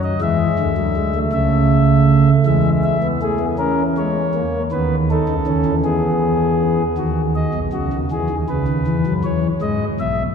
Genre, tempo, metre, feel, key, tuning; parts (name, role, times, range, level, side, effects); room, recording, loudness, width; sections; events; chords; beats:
classical, baroque-style 3-part fugue for pipe organ; 53 BPM (dotted quarters); 6/8; straight; A4 = 443 Hz
chamber organ, principal; solo; 0.0-10.2 s; B1 to E5; -15 LUFS; equal
wet church reverb, RT60 4.1 s; minimal, uncompressed stereo recording; -15 LUFS; side -6 dB against mid
0.0-7.0 A section; 7.0-10.3 B section
0.2 E7; 1.3 A/C#; 2.5 E; 3.6 A#m7b5/E; 4.7 B7/D#; 5.9 E; 7.0 Badd9; 8.1 E; 9.2 C#m/E
| 0.23 1.35 | 2.47 3.60 | 4.73 5.86 | 6.99 8.12 | 9.25